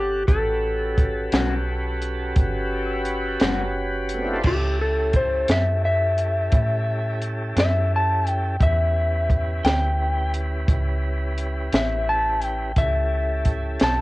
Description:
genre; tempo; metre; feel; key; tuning
slow blues; 58 BPM (dotted quarters); 12/8; straight; A mixolydian; A4 = 440 Hz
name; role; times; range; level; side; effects
electric slide guitar; melody; 0.0-14.0 s; G4 to A5; -24 LUFS; left 1 dB; cassette tape
tonewheel organ; sustained chords; 0.0-14.0 s; A3 to F#5; -29 LUFS; equal; slow rotary speaker
metallic FM bass; bass; 0.0-14.0 s; F#1 to A2; -25 LUFS; equal; none
compact cocktail drum kit; drums; 0.3-14.0 s; crash cymbal, hi-hat, kick drum, snare drum; -21 LUFS; equal; cassette tape
electric guitar through a small old amp; accompaniment; 1.3-3.6 s; A2 to F#4; -27 LUFS; left 4 dB; harmonic tremolo
room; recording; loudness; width
light reverb, studio reverb; home recording on cassette; -20 LUFS; side -19 dB against mid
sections
0.0-4.4 A section; 4.4-14.0 B section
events
electric slide guitar solo 4.4-14.0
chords
0.0 A13

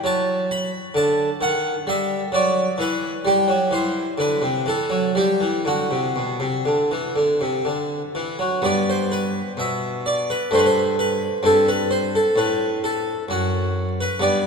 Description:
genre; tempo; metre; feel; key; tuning
classical, baroque-style suite movement for harpsichord; 60-66 BPM; 3/4; rubato; G major; A4 = 439 Hz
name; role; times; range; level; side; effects
harpsichord; solo; 0.0-14.5 s; F#2 to B5; -19 LUFS; equal; none
room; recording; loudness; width
wet church reverb, RT60 4.0 s; minimal, uncompressed stereo recording; -19 LUFS; side -5 dB against mid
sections
0.0-8.6 A section; 8.6-14.5 A section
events
none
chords
0.0 D6; 1.9 G5; 2.8 Em; 4.7 A5/E; 5.6 D; 8.6 G; 10.5 Gadd9; 11.4 Am13

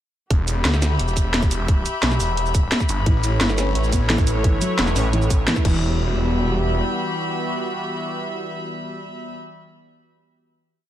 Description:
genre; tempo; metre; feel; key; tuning
dark technical drum and bass; 174 BPM; 4/4; straight; E dorian; A4 = 435 Hz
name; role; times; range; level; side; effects
snarling distorted saw bass; bass; 0.3-6.8 s; E1 to D2; -21 LUFS; equal; distortion, tube saturation, sidechain pumping
drum and bass drum kit; drums; 0.3-5.7 s; crash cymbal, hi-hat, shaker, snare drum; -23 LUFS; equal; none
electronic kick drum; drums; 0.3-5.7 s; none; -18 LUFS; equal; none
warm chamber string section; texture; 0.3-9.3 s; G3 to B5; -28 LUFS; left 2 dB; sidechain pumping
sweeping resonant pad; sustained chords; 3.1-9.3 s; E3 to C#5; -28 LUFS; equal; chorus, sidechain pumping
felt-muted upright piano; arpeggios; 3.1-6.0 s; E3 to E4; -26 LUFS; equal; sidechain pumping, ping-pong delay
room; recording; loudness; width
digital ambience; none; -18 LUFS; side -12 dB against mid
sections
0.3-5.8 drop; 5.8-8.6 final note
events
drop 0.3-5.8; band accent 5.5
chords
0.3 Em; 3.1 Aadd9; 5.7 Em

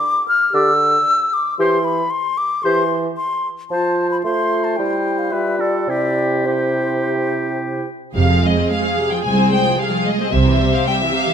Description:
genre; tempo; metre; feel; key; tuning
quick classical-period movement for symphony orchestra; 111 BPM; 4/4; rubato; C major, F minor from 8.2 s; A4 = 442 Hz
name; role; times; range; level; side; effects
mellow silver concert flute; second line; 0.0-7.9 s; C5 to F6; -19 LUFS; left 2 dB; none
dark clarinet; second line; 0.5-7.9 s; E4 to G4; -23 LUFS; left 1 dB; none
warm bassoon; accompaniment; 0.5-7.9 s; C3 to A3; -22 LUFS; right 3 dB; none
warm oboe; second line; 0.6-7.9 s; G4 to D5; -24 LUFS; equal; none
warm studio violin section; melody; 8.2-11.3 s; Eb5 to Ab5; -21 LUFS; left 3 dB; none
rich studio viola section; accompaniment; 8.2-11.3 s; C3 to Ab4; -20 LUFS; right 1 dB; none
warm studio cello section; bass; 8.2-10.8 s; C2 to C3; -20 LUFS; right 2 dB; none
warm studio double bass section; bass; 8.2-10.8 s; F1 to C2; -18 LUFS; right 4 dB; none
rich studio violin section; second line; 9.2-11.3 s; Ab4 to E5; -22 LUFS; left 2 dB; none
room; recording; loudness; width
moderate scoring stage reverb, RT60 1.6 s; none; -15 LUFS; side -8 dB against mid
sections
0.0-8.2 A section; 8.2-11.3 B section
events
none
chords
0.0 N.C.; 1.6 C/E; 3.7 F; 4.8 C/G; 5.9 C; 8.2 Fm; 10.3 C

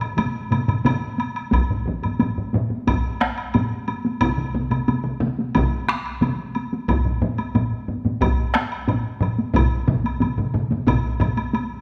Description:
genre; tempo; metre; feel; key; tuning
japanese traditional, taiko drum ensemble; 90 BPM; 4/4; straight; none; none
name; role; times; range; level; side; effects
woodblock; percussion; 0.0-11.7 s; none; -32 LUFS; equal; none
taiko ensemble; percussion; 0.2-11.7 s; none; -27 LUFS; equal; none
taiko ensemble; percussion; 0.2-11.4 s; none; -27 LUFS; equal; none
taiko ensemble; percussion; 0.2-11.4 s; none; -27 LUFS; equal; none
taiko ensemble; percussion; 1.5-11.0 s; none; -27 LUFS; equal; none
room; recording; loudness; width
wet recital hall reverb, RT60 1.5 s; none; -22 LUFS; mono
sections
0.0-1.5 A section; 1.5-11.8 B section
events
none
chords
none

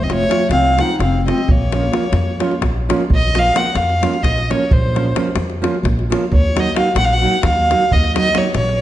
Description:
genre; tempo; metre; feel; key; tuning
balkan folk, Balkan wedding band; 261 BPM (eighths); 7/8; straight; Bb harmonic minor; A4 = 443 Hz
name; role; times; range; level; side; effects
dark violin; melody; 0.0-8.8 s; C5 to Gb5; -18 LUFS; equal; none
mellow clarinet; second line; 0.0-2.6 s; A3 to Eb4; -22 LUFS; left 4 dB; none
upright bass; bass; 0.0-8.8 s; F1 to F2; -19 LUFS; equal; none
nylon-string guitar; accompaniment; 0.1-8.5 s; F3 to Gb4; -21 LUFS; right 4 dB; none
davul; percussion; 0.1-8.8 s; none; -20 LUFS; equal; none
room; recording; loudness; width
wet recital hall reverb, RT60 1.5 s; nothing above 10.6 kHz; -13 LUFS; side -13 dB against mid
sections
0.0-3.1 A section; 3.1-8.8 B section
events
none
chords
0.0 F; 1.5 Bbm; 6.3 Ebm

